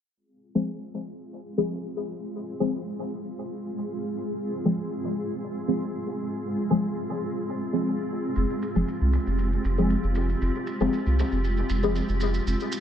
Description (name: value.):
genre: dub techno.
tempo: 117 BPM.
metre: 4/4.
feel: straight.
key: F minor.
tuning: A4 = 440 Hz.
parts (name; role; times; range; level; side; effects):
granular cloud pad; sustained chords; 0.8-12.8 s; Ab3 to Ab4; -30 LUFS; equal; built-in reverb, vintage 12-bit sampler grit.
deep mellow chord stab; stabs; 0.6-12.0 s; F3 to Ab4; -28 LUFS; left 2 dB; chorus, phaser, dub echo.
soft dub sub bass; bass; 8.4-12.6 s; F1 to C2; -25 LUFS; right 1 dB; none.
maracas; percussion; 8.4-12.8 s; none; -42 LUFS; right 4 dB; none.
room: moderate echo chamber reverb, RT60 1.6 s.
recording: low-pass filter.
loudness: -25 LUFS.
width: side -9 dB against mid.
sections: 0.2-12.8 A section.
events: filter sweep on synth stab 0.2-12.8; filter sweep 0.2-12.8.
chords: 0.2 Fm.